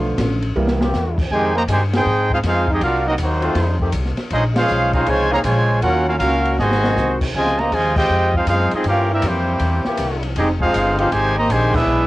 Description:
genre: jazz, big band swing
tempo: 159 BPM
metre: 4/4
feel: swing 65% on 8ths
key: F minor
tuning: A4 = 440 Hz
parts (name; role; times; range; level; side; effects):
- warm upright piano; accompaniment; 0.0-0.8 s; D3 to Bb3; -23 LUFS; right 3 dB; none
- warm trombone section; sustained chords; 0.0-11.1 s; Db3 to G4; -25 LUFS; left 1 dB; none
- upright bass; bass; 0.0-12.1 s; F1 to Ab2; -21 LUFS; equal; transformer saturation
- open jazz drum kit; drums; 0.2-11.8 s; crash cymbal, hi-hat, kick drum, ride cymbal, snare drum; -25 LUFS; left 1 dB; cassette tape
- warm trumpet section; melody; 1.3-12.1 s; Bb3 to Bb5; -19 LUFS; right 1 dB; cassette tape
- clear trombone section; second line; 1.3-12.1 s; C3 to Ab4; -22 LUFS; right 1 dB; none
room: light reverb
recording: home recording on cassette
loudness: -15 LUFS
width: side -17 dB against mid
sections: 0.0-1.3 A section; 1.3-12.1 B section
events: upright piano solo 0.0-1.3; drum fill 0.6-0.9, 6.6-7.0; band accent 1.9, 4.5, 7.9, 11.7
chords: 0.0 Bm7b5; 0.6 C7; 1.3 Fm9; 2.8 Cm7b5; 3.6 F7; 4.3 Bbm11; 5.8 Ebm9; 6.6 Ab7; 7.3 Dbmaj9; 8.9 C7; 10.4 Fm9

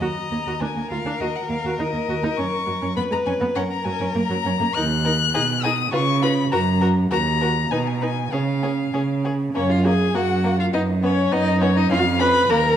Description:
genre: quick classical-period movement for string quartet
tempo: 102 BPM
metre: 2/4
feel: straight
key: Eb minor, F# major from 4.8 s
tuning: A4 = 440 Hz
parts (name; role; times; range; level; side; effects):
- rich violin; melody; 0.0-12.8 s; C#5 to F#6; -25 LUFS; left 8 dB; none
- rich violin; second line; 0.0-12.6 s; A#3 to Eb5; -28 LUFS; left 3 dB; none
- warm viola; accompaniment; 0.0-12.8 s; Gb3 to B4; -25 LUFS; right 1 dB; none
- warm cello; bass; 0.0-12.8 s; D2 to C#3; -22 LUFS; right 2 dB; none
room: wet recital hall reverb, RT60 1.5 s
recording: dark, warm production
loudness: -19 LUFS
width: side -10 dB against mid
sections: 0.0-9.6 A section; 9.6-12.8 B section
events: none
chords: 0.0 Ebm; 0.6 Bb7/D; 1.2 Eb5; 2.4 Gb; 3.0 Db7/F; 3.6 Gb; 4.8 D#m; 5.3 G#m7/B (rootless); 5.9 C#7; 6.5 F#; 7.1 D#m; 7.7 G#m/B; 8.3 C#; 9.6 F#; 10.7 Badd9/F#; 11.9 N.C.

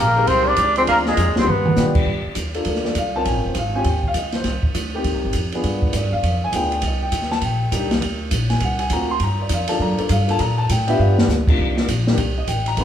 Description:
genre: jazz, small-group swing and bop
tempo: 202 BPM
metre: 4/4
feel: swing 62% on 8ths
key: G minor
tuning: A4 = 440 Hz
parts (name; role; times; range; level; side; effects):
- trumpet with cup mute; melody; 0.0-2.0 s; Ab4 to D5; -19 LUFS; left 2 dB; none
- breathy tenor saxophone; second line; 0.0-2.0 s; Ab3 to D4; -22 LUFS; right 3 dB; none
- upright bass; bass; 0.0-12.8 s; F1 to B2; -22 LUFS; equal; none
- warm upright piano; accompaniment; 0.2-12.8 s; C3 to C6; -23 LUFS; left 2 dB; none
- open jazz drum kit; drums; 0.3-12.8 s; crash cymbal, hi-hat, kick drum, ride cymbal, snare drum, toms; -22 LUFS; equal; none
room: wet large studio reverb, RT60 1.3 s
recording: band playing live in one room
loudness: -17 LUFS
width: side -10 dB against mid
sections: 0.0-2.1 A section; 2.1-11.6 B section; 11.6-12.8 B section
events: drum fill 1.5, 11.0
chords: 0.0 Abmaj7; 0.9 Dm7b5; 1.5 G7; 2.1 Gm9; 3.3 Bbm7; 3.9 C#maj9#11; 4.5 Abmaj9; 5.6 G7b9; 6.8 Cm9; 8.0 D7alt; 9.2 Gm9; 11.0 G7; 11.6 Cm7

